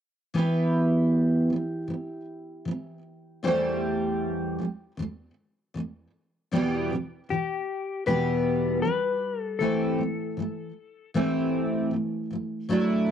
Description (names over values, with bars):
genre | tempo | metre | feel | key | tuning
pop | 78 BPM | 4/4 | swing 55% on 16ths | unclear | A4 = 439 Hz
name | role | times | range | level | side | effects
picked steel-string acoustic guitar | accompaniment | 0.3-13.1 s | E2 to C5 | -25 LUFS | right 1 dB | double-tracked left and right
clean lap steel guitar | melody | 7.3-11.1 s | G4 to B4 | -28 LUFS | left 6 dB | cassette tape
room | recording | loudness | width
moderate spring reverb, RT60 1.2 s, small room ambience | home recording on cassette | -25 LUFS | side -9 dB against mid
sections
0.3-6.5 A section; 6.5-13.1 B section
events
none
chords
0.3 Em; 3.4 Am7/E; 6.5 Em; 9.6 Am7/E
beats
| 0.35 1.12 1.89 2.66 | 3.44 4.21 4.98 5.75 | 6.52 7.29 8.06 8.83 | 9.61 10.38 11.15 11.92 | 12.69